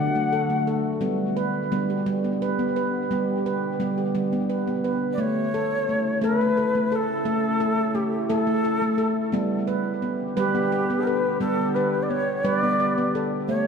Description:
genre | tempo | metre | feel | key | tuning
world meditative, meditative tuned percussion | 58 BPM (dotted quarters) | 6/8 | straight | G lydian | A4 = 441 Hz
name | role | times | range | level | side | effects
mellow Native American-style cedar flute | melody | 0.0-0.7, 5.1-13.7 s | G4 to F#5 | -25 LUFS | left 1 dB | diffuse ambient delay
deep dark ambient pad | sustained chords | 0.0-13.7 s | C#3 to G4 | -29 LUFS | equal | chorus, built-in reverb
handpan | arpeggios | 0.0-13.7 s | D3 to B4 | -24 LUFS | equal | diffuse ambient delay
room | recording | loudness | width
wet echo chamber reverb, RT60 1.6 s, studio ambience | none | -21 LUFS | side -6 dB against mid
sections
0.0-5.2 A section; 5.2-13.7 B section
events
none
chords
0.0 D; 1.0 G; 5.2 A; 9.3 G

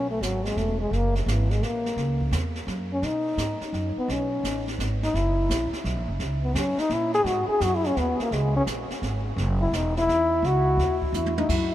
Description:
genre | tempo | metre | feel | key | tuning
jazz, small-group swing and bop | 170 BPM | 3/4 | swing 65% on 8ths | F# mixolydian | A4 = 440 Hz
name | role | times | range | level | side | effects
warm trombone | melody | 0.0-11.7 s | C#3 to G#4 | -25 LUFS | left 1 dB | none
upright bass | bass | 0.0-11.7 s | E1 to B2 | -27 LUFS | right 1 dB | none
jazz brush drum kit | drums | 0.2-11.7 s | brushed snare drum, crash cymbal, hi-hat, kick drum, snare drum, toms | -33 LUFS | right 1 dB | none
room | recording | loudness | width
moderate huge ambient reverb, RT60 7.6 s | in a vast, echoing space | -23 LUFS | side -13 dB against mid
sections
0.0-11.5 A section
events
trombone solo 0.0-11.7; drum fill 11.1-11.5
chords
0.0 Eadd11; 0.9 F#add9; 2.0 C#m; 2.7 F#5; 3.0 B13; 5.1 F#7; 7.3 G#5; 8.3 C#5; 9.4 F#5

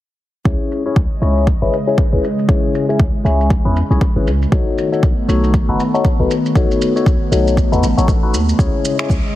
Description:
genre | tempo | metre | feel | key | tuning
afro house | 118 BPM | 4/4 | swing 59% on 16ths | C# minor | A4 = 440 Hz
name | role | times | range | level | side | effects
warm analog pad | sustained chords | 0.5-9.4 s | C#3 to D#5 | -21 LUFS | right 1 dB | chorus, sidechain pumping
barky tine electric piano | stabs | 0.5-9.1 s | C#4 to C#5 | -19 LUFS | left 4 dB | overdrive, phaser, sidechain pumping, low-pass filter, dub echo
warm 808-style bass | bass | 0.5-9.2 s | F#1 to E2 | -16 LUFS | equal | sidechain pumping
electronic kick drum | drums | 0.5-9.2 s | none | -16 LUFS | equal | overdrive
electronic shaker and finger snaps | drums | 0.5-9.2 s | none | -29 LUFS | right 2 dB | overdrive, low-pass filter on perc, low-pass filter on snare, low-pass filter on room
room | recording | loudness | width
light reverb | heavily compressed radio sound, multiband compression | -13 LUFS | side -14 dB against mid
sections
0.5-9.4 A section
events
filter sweep on drum 0.5-9.4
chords
0.5 C#m; 4.5 B7; 8.6 C#m

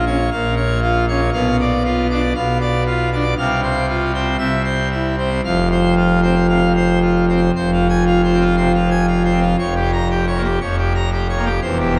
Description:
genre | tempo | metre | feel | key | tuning
classical, organ toccata | 117 BPM | 4/4 | straight | unclear | A4 = 440 Hz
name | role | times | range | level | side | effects
pipe organ, full organ | solo | 0.0-12.0 s | E1 to Bb5 | -17 LUFS | equal | none
room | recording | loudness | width
wet church reverb, RT60 3.5 s | none | -17 LUFS | mono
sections
0.0-7.5 A section; 7.5-12.0 B section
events
none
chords
0.0 Bbm; 1.3 Bdim; 3.4 F5/C; 4.4 C; 5.4 F5; 7.5 Fm; 9.6 Gm7b5/F

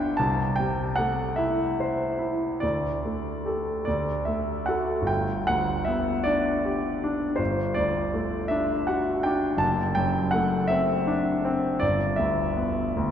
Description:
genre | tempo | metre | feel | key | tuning
classical, romantic nocturne for solo piano | 47-55 BPM (dotted quarters) | 12/8 | rubato | unclear | A4 = 440 Hz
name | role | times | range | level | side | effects
clear concert grand piano | solo | 0.0-13.1 s | F#1 to A5 | -23 LUFS | equal | none
room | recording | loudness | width
wet church reverb, RT60 3.4 s | dark, warm production | -23 LUFS | side -9 dB against mid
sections
0.0-13.1 A section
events
none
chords
0.2 Am/C; 2.6 Dsus4; 3.9 D; 5.1 G; 7.4 D/G; 9.6 D7/F#; 11.8 G

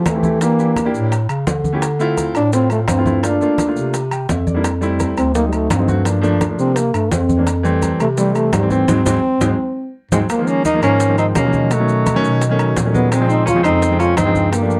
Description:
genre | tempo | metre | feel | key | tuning
Afro-Cuban jazz | 170 BPM | 4/4 | straight | F major, Db major from 10.3 s | A4 = 440 Hz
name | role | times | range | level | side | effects
mellow trombone | melody | 0.0-14.8 s | G3 to F4 | -20 LUFS | equal | none
warm grand piano | accompaniment | 0.0-14.8 s | Db3 to G5 | -22 LUFS | equal | none
mellow bass clarinet | bass | 0.0-14.8 s | D2 to E3 | -21 LUFS | equal | none
bongos | percussion | 0.1-14.8 s | none | -29 LUFS | equal | none
congas | percussion | 0.1-14.8 s | none | -26 LUFS | equal | none
maracas | percussion | 0.1-14.8 s | none | -35 LUFS | equal | none
timbales | percussion | 0.1-14.7 s | none | -29 LUFS | equal | none
clear tenor saxophone | second line | 10.1-14.8 s | F3 to Db4 | -26 LUFS | equal | none
room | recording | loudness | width
light reverb | dark, warm production | -16 LUFS | mono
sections
0.0-10.3 A section; 10.3-14.8 B section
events
grand piano fill 3.9-4.6, 9.2-10.3; band accent 8.9-10.3; drum fill 9.2-10.3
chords
0.4 Em7b5; 1.1 A; 1.8 Dm9; 3.2 Gm9; 3.9 C9; 4.6 Fmaj9; 5.3 D7b9; 6.1 Gm7; 6.8 C13; 7.5 Fmaj9; 8.9 Ab7; 10.3 Db69; 11.7 Cb9; 13.1 Bbm9

